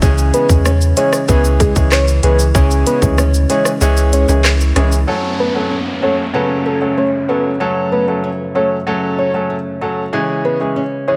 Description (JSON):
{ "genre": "dancehall", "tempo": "95 BPM", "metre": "4/4", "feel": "straight", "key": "F# minor", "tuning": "A4 = 437 Hz", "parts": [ { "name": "clear grand piano", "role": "accompaniment", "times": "0.0-11.2 s", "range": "E3 to A4", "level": "-22 LUFS", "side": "equal", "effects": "sidechain pumping" }, { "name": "nylon-string guitar", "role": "arpeggios", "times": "0.0-11.2 s", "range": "F#2 to C#4", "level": "-23 LUFS", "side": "equal", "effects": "none" }, { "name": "punchy sub bass", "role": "bass", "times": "0.0-5.0 s", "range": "C#2 to E2", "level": "-16 LUFS", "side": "equal", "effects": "none" }, { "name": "island pop drum kit", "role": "drums", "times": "0.0-5.1 s", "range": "handclaps, hi-hat, kick drum, rim click, shaker", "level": "-19 LUFS", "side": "equal", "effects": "none" }, { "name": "egg shaker and timbales", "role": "percussion", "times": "0.0-5.1 s", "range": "none", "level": "-29 LUFS", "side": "equal", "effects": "none" }, { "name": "soft octave-layered synth lead", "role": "melody", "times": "0.3-11.2 s", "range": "G#4 to C#5", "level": "-21 LUFS", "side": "equal", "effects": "chorus" }, { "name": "downlifter", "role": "sound effects", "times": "5.1-10.1 s", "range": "none", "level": "-30 LUFS", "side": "equal", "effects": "none" } ], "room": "light reverb", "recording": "none", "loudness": "-15 LUFS", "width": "mono", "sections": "0.0-5.1 A section; 5.1-11.2 B section", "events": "kick muted 3.8-5.1", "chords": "0.0 C#m; 5.1 F#m; 10.1 C#m", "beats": "| 0.02 0.66 1.29 1.92 | 2.55 3.18 3.81 4.45 | 5.08 5.71 6.34 6.97 | 7.60 8.23 8.87 9.50 | 10.13 10.76" }